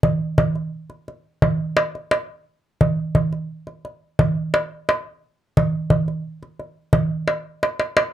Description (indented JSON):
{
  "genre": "arabic",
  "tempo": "87 BPM",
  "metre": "4/4",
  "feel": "straight",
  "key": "none",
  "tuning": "none",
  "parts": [
    { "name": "darbuka", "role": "percussion", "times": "0.0-8.1 s", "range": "none", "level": "-18 LUFS", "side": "equal", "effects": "none" }
  ],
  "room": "wet small room reverb, RT60 0.5 s",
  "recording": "dark, warm production",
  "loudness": "-19 LUFS",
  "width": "side -12 dB against mid",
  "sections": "0.0-8.1 A section",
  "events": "drum fill 7.6-8.1",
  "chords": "none"
}